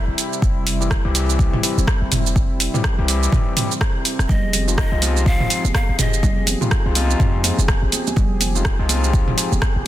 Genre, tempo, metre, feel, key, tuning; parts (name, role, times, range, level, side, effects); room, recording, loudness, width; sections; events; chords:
afro house; 124 BPM; 4/4; swing 59% on 16ths; F minor; A4 = 442 Hz
breathy large pan pipes; melody; 0.0-0.2, 4.3-6.5 s; Eb5 to F5; -28 LUFS; equal; dub echo
warm analog pad; sustained chords; 0.0-9.9 s; C3 to Ab4; -27 LUFS; right 1 dB; chorus, sidechain pumping
warm 808-style bass; bass; 0.1-9.8 s; F1 to F2; -21 LUFS; equal; sidechain pumping
deep house drum kit; drums; 0.2-9.7 s; hi-hat, rim click, shaker, toms; -22 LUFS; right 2 dB; soft clipping on snare
electronic kick drum; drums; 0.4-9.7 s; -19 LUFS; equal
overdriven tine electric piano; stabs; 0.8-9.5 s; E3 to G4; -27 LUFS; left 5 dB; sidechain pumping, tape echo
congas; percussion; 4.3-9.6 s; -29 LUFS; right 4 dB
light reverb; dense, heavily limited modern master; -16 LUFS; side -13 dB against mid
0.0-9.9 A section
0.0 C/F; 4.3 Fm7